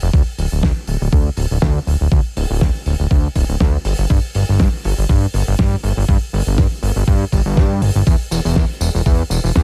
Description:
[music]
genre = nu-disco, nu disco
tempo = 121 BPM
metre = 4/4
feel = swing 56% on 16ths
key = unclear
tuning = A4 = 442 Hz
[part]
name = fat analog bass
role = bass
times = 0.0-9.6 s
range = D1 to G2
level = -19 LUFS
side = equal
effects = tube saturation
[part]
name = electronic kick drum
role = drums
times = 0.1-9.6 s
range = none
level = -18 LUFS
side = equal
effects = none
[part]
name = damped 70s drum kit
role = drums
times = 0.4-9.6 s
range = hi-hat, snare drum, tambourine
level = -27 LUFS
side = equal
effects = none
[sound]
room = little or no reverb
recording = echo-heavy mix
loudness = -17 LUFS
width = mono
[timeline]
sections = 0.0-9.6 A section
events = none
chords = none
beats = | 0.14 0.63 1.13 1.62 | 2.12 2.61 3.11 3.61 | 4.10 4.60 5.09 5.59 | 6.09 6.58 7.08 7.57 | 8.07 8.56 9.06 9.56

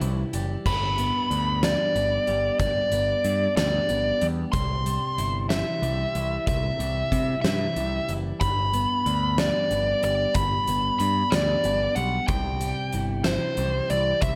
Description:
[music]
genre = post-rock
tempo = 62 BPM (dotted quarters)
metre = 6/8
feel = straight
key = G major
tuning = A4 = 440 Hz
[part]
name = twelve-string electric guitar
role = arpeggios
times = 0.0-14.4 s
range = G2 to E4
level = -33 LUFS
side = equal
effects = tape echo
[part]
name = growling picked electric bass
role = bass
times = 0.0-14.4 s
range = F#1 to C3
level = -31 LUFS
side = equal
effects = overdrive
[part]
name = huge arena drum kit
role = drums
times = 0.0-14.4 s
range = crash cymbal, hi-hat, kick drum, snare drum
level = -32 LUFS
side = equal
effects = none
[part]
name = nasal lead guitar with a parked wah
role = melody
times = 0.7-14.4 s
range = C5 to C6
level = -27 LUFS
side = equal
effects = overdrive
[sound]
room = moderate small room reverb, RT60 0.5 s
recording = none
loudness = -25 LUFS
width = mono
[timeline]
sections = 0.7-14.4 A section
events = none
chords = 0.0 C; 0.7 G; 4.5 C; 8.4 G; 12.3 C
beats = | 0.66 1.63 | 2.60 3.57 | 4.54 5.51 | 6.48 7.45 | 8.42 9.39 | 10.36 11.33 | 12.30 13.26 | 14.23

